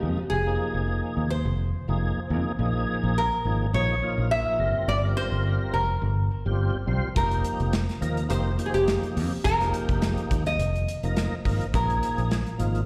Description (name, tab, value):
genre	electric jazz fusion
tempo	105 BPM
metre	4/4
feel	swing 54% on 16ths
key	F minor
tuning	A4 = 439 Hz
part	nylon-string guitar	melody	0.0-12.8 s	G4 to E5	-31 LUFS	equal	slapback echo, tape echo
part	tonewheel organ	accompaniment	0.0-12.8 s	F3 to C5	-33 LUFS	equal	slow rotary speaker, overdrive, chorus vibrato, slapback echo
part	fingered electric bass	bass	0.0-12.9 s	F1 to F2	-28 LUFS	equal	none
part	modern studio drum kit	drums	7.2-12.9 s	hi-hat, kick drum, snare drum	-32 LUFS	equal	none
room	studio reverb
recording	live gig heard through the venue's PA, recital hall reverb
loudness	-25 LUFS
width	mono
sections	0.0-12.9 A section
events	none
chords	0.0 Fm11; 2.6 Bbm7; 4.6 Gm7; 7.2 F9sus4; 11.7 Bb7sus4